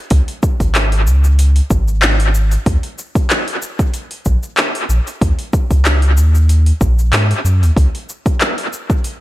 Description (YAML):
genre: organic downtempo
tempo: 94 BPM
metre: 4/4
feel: swing 54% on 16ths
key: Eb minor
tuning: A4 = 441 Hz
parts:
  - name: warm sub bass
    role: bass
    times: 0.1-7.9 s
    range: Ab1 to Ab2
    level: -12 LUFS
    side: equal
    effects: sidechain pumping
  - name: deep house drum kit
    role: drums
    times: 0.1-9.2 s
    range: handclaps, hi-hat, shaker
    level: -18 LUFS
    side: equal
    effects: overdrive, analog delay
  - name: electronic kick drum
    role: drums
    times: 0.1-9.0 s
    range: none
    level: -15 LUFS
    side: equal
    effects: overdrive
room: little or no reverb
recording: echo-heavy mix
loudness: -12 LUFS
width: side -16 dB against mid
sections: 0.0-9.2 A section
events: none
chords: none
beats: | 0.11 0.75 1.39 2.03 | 2.66 3.30 3.94 4.58 | 5.22 5.86 6.49 7.13 | 7.77 8.41 9.05